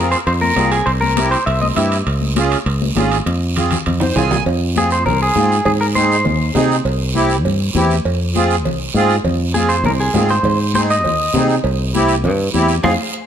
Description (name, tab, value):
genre	latin, cumbia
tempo	200 BPM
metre	4/4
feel	straight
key	F harmonic minor, F minor from 4.5 s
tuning	A4 = 440 Hz
part	clean electric guitar	melody	0.0-2.0, 4.8-6.2, 9.5-12.9 s	Ab4 to F5	-18 LUFS	equal	spring reverb
part	accordion	accompaniment	0.0-12.9 s	C4 to Ab5	-19 LUFS	right 2 dB	light tremolo tuning
part	fingered electric bass	bass	0.0-12.9 s	Ab1 to C3	-18 LUFS	equal	none
part	guiro	percussion	0.1-12.9 s	none	-28 LUFS	right 6 dB	none
part	timbales and cowbell	percussion	0.1-12.9 s	none	-25 LUFS	right 7 dB	none
part	congas	percussion	0.3-12.9 s	none	-23 LUFS	left 5 dB	none
room	moderate studio reverb, RT60 1.0 s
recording	none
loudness	-14 LUFS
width	side -9 dB against mid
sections	0.0-4.5 A section; 4.5-13.3 B section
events	drum fill 3.3-4.5; accordion fill 3.9-4.5; band accent 12.8-13.3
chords	0.0 Fm; 0.9 C7; 2.1 Db; 3.3 Fm; 5.7 Ab; 6.9 C; 8.1 Fm; 10.4 Ab; 11.6 C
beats	0.27 0.57 | 0.87 1.17 1.47 1.77 | 2.06 2.37 2.66 2.96 | 3.26 3.56 3.86 4.16 | 4.46 4.76 5.06 5.36 | 5.66 5.96 6.25 6.55 | 6.85 7.15 7.45 7.75 | 8.05 8.35 8.65 8.95 | 9.25 9.55 9.85 10.14 | 10.44 10.74 11.04 11.34 | 11.64 11.94 12.24 12.54 | 12.84